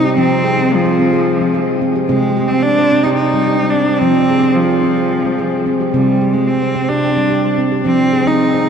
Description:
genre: world meditative, meditative tuned percussion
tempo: 218 BPM (eighths)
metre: 7/8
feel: straight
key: unclear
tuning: A4 = 439 Hz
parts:
  - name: clear cello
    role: melody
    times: 0.0-8.7 s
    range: F3 to Eb4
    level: -15 LUFS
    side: equal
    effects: shimmer reverb, ping-pong delay
  - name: handpan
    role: arpeggios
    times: 0.0-8.7 s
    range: C3 to C5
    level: -14 LUFS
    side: right 1 dB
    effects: shimmer reverb, ping-pong delay
room: wet cathedral reverb, RT60 4.9 s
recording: in a vast, echoing space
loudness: -12 LUFS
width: side -7 dB against mid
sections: 0.0-8.7 A section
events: none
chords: 0.2 Fm; 2.1 Cm; 4.0 Fm; 5.9 C5; 7.9 Fm

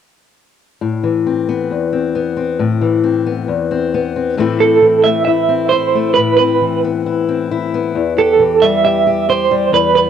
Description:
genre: folk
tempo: 135 BPM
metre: 4/4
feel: straight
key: A minor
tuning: A4 = 441 Hz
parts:
  - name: fingerpicked steel-string acoustic guitar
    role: accompaniment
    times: 0.8-10.1 s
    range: E2 to G4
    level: -16 LUFS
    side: left 7 dB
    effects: cassette tape
  - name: electric guitar through a small old amp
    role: melody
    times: 4.6-10.1 s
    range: A4 to E5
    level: -11 LUFS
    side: right 6 dB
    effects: tremolo, cassette tape
room: wet studio reverb, RT60 0.6 s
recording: home recording on cassette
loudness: -12 LUFS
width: side -8 dB against mid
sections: 0.8-4.4 A section; 4.4-10.1 B section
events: none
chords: 0.8 Amadd9; 7.9 Em

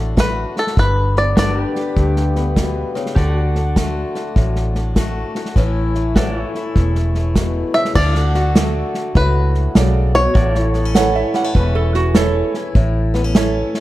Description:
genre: honky-tonk and classic country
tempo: 100 BPM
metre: 4/4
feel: swing 65% on 8ths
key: D major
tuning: A4 = 440 Hz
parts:
  - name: bluegrass banjo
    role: melody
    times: 0.0-2.9, 7.7-11.9 s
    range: A4 to E5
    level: -19 LUFS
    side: equal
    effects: none
  - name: picked swing-style acoustic guitar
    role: accompaniment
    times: 0.0-13.8 s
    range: E2 to G4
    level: -24 LUFS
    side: left 4 dB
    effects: none
  - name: pedal steel guitar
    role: sustained chords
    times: 0.0-13.8 s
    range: E4 to F#5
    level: -27 LUFS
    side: right 1 dB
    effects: none
  - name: vintage muted fingered electric bass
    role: bass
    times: 0.0-13.6 s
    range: E1 to D2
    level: -18 LUFS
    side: equal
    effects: none
  - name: unplugged drum kit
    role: drums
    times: 0.2-13.8 s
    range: crash cymbal, hi-hat, kick drum, snare drum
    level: -17 LUFS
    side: equal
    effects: none
  - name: clear grand piano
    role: accompaniment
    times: 8.6-13.8 s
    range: E4 to D5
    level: -23 LUFS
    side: right 6 dB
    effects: none
  - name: lap resonator guitar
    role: second line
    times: 11.0-12.5 s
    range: F#4 to F#5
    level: -21 LUFS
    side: right 6 dB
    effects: none
room: moderate recital hall reverb, RT60 1.4 s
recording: dark, warm production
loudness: -14 LUFS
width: side -15 dB against mid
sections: 0.0-8.0 A section; 8.0-13.8 B section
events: none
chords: 0.0 D; 0.8 G; 3.2 D; 5.6 A; 8.0 D; 10.4 A

